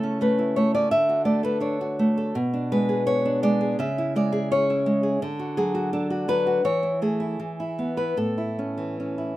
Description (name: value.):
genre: romantic piece for solo classical guitar.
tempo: 75-87 BPM.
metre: 4/4.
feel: rubato.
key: A major.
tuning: A4 = 440 Hz.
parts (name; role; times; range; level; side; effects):
nylon-string guitar; solo; 0.0-9.4 s; A2 to E5; -22 LUFS; equal; none.
room: light reverb, small room reverb.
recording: rough home demo mix.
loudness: -21 LUFS.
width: side -16 dB against mid.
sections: 0.0-9.4 A section.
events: none.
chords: 0.0 A/C#; 0.9 D; 2.4 G#dim/B; 3.8 C#m; 5.2 D; 6.6 A/E; 7.4 E; 8.2 A.